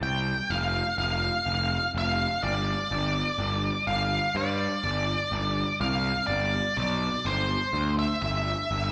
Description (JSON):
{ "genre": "post-rock", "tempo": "62 BPM", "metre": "4/4", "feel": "straight", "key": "unclear", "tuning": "A4 = 442 Hz", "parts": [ { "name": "octave-fuzz lead guitar", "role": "melody", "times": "0.0-8.9 s", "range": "C5 to G5", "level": "-30 LUFS", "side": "equal", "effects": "distortion" }, { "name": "fuzz picked electric bass", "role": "bass", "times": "0.0-8.9 s", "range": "F1 to G2", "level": "-31 LUFS", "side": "equal", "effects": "overdrive" } ], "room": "wet scoring stage reverb, RT60 1.7 s", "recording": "recorded in a church or concert hall", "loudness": "-27 LUFS", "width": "mono", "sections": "0.0-8.9 A section", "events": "none", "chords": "0.0 F5; 2.4 G5" }